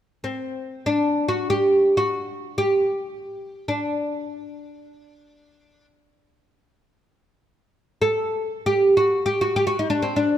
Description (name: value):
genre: arabic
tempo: free time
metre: none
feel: none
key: D maqam hijaz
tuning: A4 = 441 Hz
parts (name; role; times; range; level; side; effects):
- oud; melody; 0.2-10.4 s; C4 to A4; -20 LUFS; equal; none
room: moderate scoring stage reverb, RT60 2.0 s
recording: close, detailed microphones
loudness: -20 LUFS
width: side -11 dB against mid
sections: 0.0-10.4 A section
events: none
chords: none